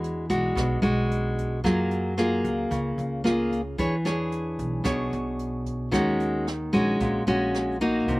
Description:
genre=bossa nova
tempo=112 BPM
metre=4/4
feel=straight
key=unclear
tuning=A4 = 440 Hz
part: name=nylon-string guitar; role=accompaniment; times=0.0-8.2 s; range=Bb2 to C#5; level=-24 LUFS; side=equal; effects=none
part: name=upright bass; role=bass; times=0.0-8.2 s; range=Bb1 to Gb2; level=-32 LUFS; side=right 1 dB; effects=none
part: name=jazz brush drum kit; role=drums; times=0.0-8.2 s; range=hi-hat, kick drum, rim click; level=-35 LUFS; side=right 1 dB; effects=none
room=little or no reverb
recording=none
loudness=-23 LUFS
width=side -21 dB against mid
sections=0.0-8.2 A section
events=none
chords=0.0 E9; 1.6 Gbmaj9; 3.8 E6; 5.9 Ebm7

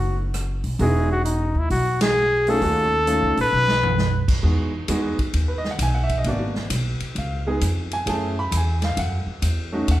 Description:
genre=jazz, small-group swing and bop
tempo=132 BPM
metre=4/4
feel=swing 67% on 8ths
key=E major from 4.4 s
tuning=A4 = 440 Hz
part: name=mellow trumpet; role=melody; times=0.0-4.3 s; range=D#4 to B4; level=-21 LUFS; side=left 1 dB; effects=none
part: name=clear baby grand piano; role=accompaniment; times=0.0-10.0 s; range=G#3 to B5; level=-26 LUFS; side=right 1 dB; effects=none
part: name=upright bass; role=bass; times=0.0-10.0 s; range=E1 to F#2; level=-23 LUFS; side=equal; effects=none
part: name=swinging big-band drum kit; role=drums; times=0.3-10.0 s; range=crash cymbal, hi-hat, kick drum, ride cymbal, rim click, snare drum, toms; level=-27 LUFS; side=right 1 dB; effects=none
room=moderate recital hall reverb, RT60 1.4 s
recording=recorded in a church or concert hall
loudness=-19 LUFS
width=side -14 dB against mid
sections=0.0-4.4 A section; 4.4-10.0 B section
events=band accent 1.9; drum fill 3.5-4.0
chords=0.0 B9; 0.8 Emaj9; 2.6 D#m7b5; 3.5 N.C.; 4.4 Emaj7; 6.3 G#m7b5; 7.2 C#7; 8.1 F#m7

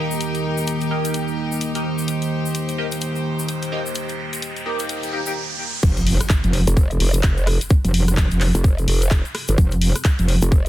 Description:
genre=bass house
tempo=128 BPM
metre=4/4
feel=swing 60% on 16ths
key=unclear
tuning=A4 = 441 Hz
part: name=deep dark ambient pad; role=sustained chords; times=0.0-10.7 s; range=Eb3 to G4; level=-26 LUFS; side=right 1 dB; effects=chorus, built-in reverb, sidechain pumping
part: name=band-passed chord stab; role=stabs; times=0.0-5.3 s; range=Bb3 to G4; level=-28 LUFS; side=equal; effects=phaser, wide subtle chorus, sidechain pumping, digital delay
part: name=bright chamber string section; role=texture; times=0.0-5.4 s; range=Eb4 to G5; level=-28 LUFS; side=left 1 dB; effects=sidechain pumping
part: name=tube shaker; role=percussion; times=0.1-10.7 s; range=none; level=-34 LUFS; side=left 4 dB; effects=none
part: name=garage drum kit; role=drums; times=0.2-10.7 s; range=crash cymbal, handclaps, hi-hat, rim click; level=-26 LUFS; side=left 1 dB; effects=none
part: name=riser and impact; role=sound effects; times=3.3-7.7 s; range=none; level=-29 LUFS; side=right 1 dB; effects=none
part: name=metallic wobble bass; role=bass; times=5.8-10.4 s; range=F1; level=-17 LUFS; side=equal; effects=chorus, overdrive, sidechain pumping
part: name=electronic kick drum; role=drums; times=5.8-10.6 s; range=none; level=-16 LUFS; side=equal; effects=none
part: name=growl bass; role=bass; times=6.7-10.7 s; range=F1 to G1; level=-18 LUFS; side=equal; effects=chorus, sidechain pumping
room=digital ambience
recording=dense, heavily limited modern master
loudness=-18 LUFS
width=side -14 dB against mid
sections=0.0-5.8 A section; 5.8-10.7 B section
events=filter sweep on ambient pad 0.0-5.8; riser 3.3-5.8; drop 5.8-10.7; impact 5.8-7.7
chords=0.0 Eb; 5.8 Fsus2

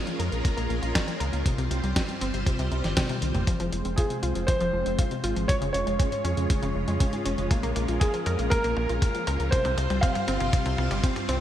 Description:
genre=italo disco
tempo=119 BPM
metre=4/4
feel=straight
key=F minor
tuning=A4 = 440 Hz
part: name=string machine, full ensemble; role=sustained chords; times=0.0-11.4 s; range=G3 to Db5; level=-31 LUFS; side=equal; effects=ensemble chorus
part: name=analog pluck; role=arpeggios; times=0.0-11.4 s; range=G2 to Bb4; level=-32 LUFS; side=left 2 dB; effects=chorus, digital delay
part: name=dusty soul sampler-style drum kit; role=drums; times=0.1-11.4 s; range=hi-hat, snare drum, toms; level=-33 LUFS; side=equal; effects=high-pass filter on hats, studio reverb, high-pass filter on snare, high-pass filter on toms
part: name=round analog bass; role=bass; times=0.2-11.4 s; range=F1 to F2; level=-29 LUFS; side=equal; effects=none
part: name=electronic kick drum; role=drums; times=0.4-11.1 s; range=none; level=-25 LUFS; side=equal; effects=studio reverb
part: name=dark grand piano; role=melody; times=4.0-11.0 s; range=Ab4 to F5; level=-30 LUFS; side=right 1 dB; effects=digital delay
room=moderate lush hall reverb, RT60 2.1 s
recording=bright 1980s-style digital production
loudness=-24 LUFS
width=side -11 dB against mid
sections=0.0-3.5 A section; 3.5-11.4 B section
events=drum fill 3.0-3.5, 3.5-11.4; filter sweep on string machine 3.5-11.4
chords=0.0 Bbm7; 1.5 Csus4; 3.5 Fm; 5.5 Db/F; 7.5 Bbm7; 9.5 Csus4

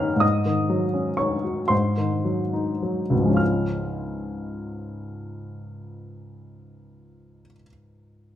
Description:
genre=classical, romantic character piece for solo piano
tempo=33-45 BPM (dotted quarters)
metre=6/8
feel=rubato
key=Db major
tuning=A4 = 439 Hz
part: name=warm baby grand piano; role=solo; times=0.0-8.4 s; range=Db2 to G6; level=-22 LUFS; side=left 1 dB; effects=none
room=moderate recital hall reverb, RT60 1.3 s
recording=close, detailed microphones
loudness=-21 LUFS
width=side -11 dB against mid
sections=0.0-3.4 A section; 3.4-6.7 B section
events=slowing down 0.0-3.4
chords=0.2 Ab7sus4; 1.7 Ab7; 3.4 Db

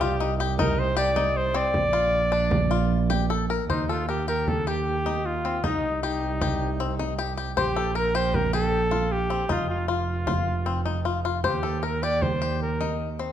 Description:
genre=contemporary instrumental, chamber music in an uneven meter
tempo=155 BPM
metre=5/4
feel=straight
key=Eb lydian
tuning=A4 = 441 Hz
part: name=clear flugelhorn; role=melody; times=0.0-13.0 s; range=Eb4 to D5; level=-27 LUFS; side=equal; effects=none
part: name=bluegrass banjo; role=arpeggios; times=0.0-13.3 s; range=C4 to C5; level=-29 LUFS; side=left 7 dB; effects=none
part: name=muted double bass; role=bass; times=0.0-13.3 s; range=F1 to Eb2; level=-27 LUFS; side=right 3 dB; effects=none
part: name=frame drum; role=percussion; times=0.4-13.0 s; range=none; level=-32 LUFS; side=right 1 dB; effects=none
room=moderate scoring stage reverb, RT60 1.6 s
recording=dark, warm production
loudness=-22 LUFS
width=side -10 dB against mid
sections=0.0-3.7 A section; 3.7-13.3 B section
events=none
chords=0.0 Cm; 1.7 Bb; 3.7 Eb6; 5.6 Cm; 7.6 Bbsus2; 9.5 F5; 11.4 Eb6

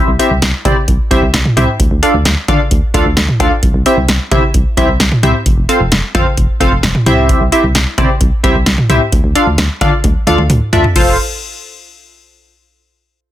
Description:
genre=synth-pop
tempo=131 BPM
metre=4/4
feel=straight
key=F major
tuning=A4 = 440 Hz
part: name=funky polysynth comp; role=accompaniment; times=0.0-11.2 s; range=C4 to F5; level=-14 LUFS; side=equal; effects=chorus, plate reverb
part: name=solid FM bass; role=bass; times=0.0-11.2 s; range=F1 to D3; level=-15 LUFS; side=equal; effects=none
part: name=electro analog drum machine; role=drums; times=0.2-11.1 s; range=cowbell, crash cymbal, hi-hat, kick drum, snare drum, toms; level=-13 LUFS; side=equal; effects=none
room=light reverb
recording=dense, heavily limited modern master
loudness=-10 LUFS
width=side -13 dB against mid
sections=0.0-11.0 A section; 11.0-12.8 B section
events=drum fill 10.0-11.0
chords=0.0 C; 1.8 Dm; 3.6 C; 5.5 F; 7.1 C; 9.1 Dm; 11.0 F

